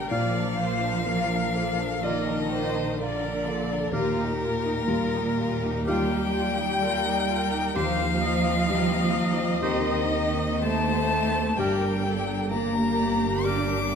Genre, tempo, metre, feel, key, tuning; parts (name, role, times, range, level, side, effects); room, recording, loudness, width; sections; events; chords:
cinematic, emotional film score for orchestra; 64 BPM; 4/4; rubato; A4 = 436 Hz
rich chamber violin section; melody; 0.0-14.0 s; Eb4 to D5; -40 LUFS; left 1 dB
rich violin; melody; 0.0-14.0 s; Bb4 to D6; -31 LUFS; left 7 dB
hollow concert flute; second line; 0.0-14.0 s; Bb4 to D6; -32 LUFS; left 1 dB
warm symphonic violin section; second line; 0.0-14.0 s; Bb3 to Bb4; -36 LUFS; right 1 dB
dark baby grand piano; accompaniment; 0.0-14.0 s; Eb2 to G4; -34 LUFS; left 4 dB
warm symphonic viola section; accompaniment; 0.0-14.0 s; F4 to Eb5; -34 LUFS; equal
dark French horn section; sustained chords; 0.0-14.0 s; Bb2 to D4; -31 LUFS; left 4 dB
warm studio cello section; bass; 0.0-14.0 s; Bb2 to D4; -30 LUFS; right 4 dB
warm symphonic double bass section; bass; 0.0-14.0 s; G1 to Eb2; -31 LUFS; right 4 dB
clear oboe; second line; 0.1-13.8 s; Bb4 to F5; -38 LUFS; equal
mellow clarinet; second line; 0.1-13.8 s; G4 to D5; -35 LUFS; equal
wet recital hall reverb, RT60 1.5 s; -23 LUFS; side -6 dB against mid
0.0-14.0 A section
0.1 Bb; 3.9 Ebadd9; 7.8 Cm/Eb; 11.6 Gm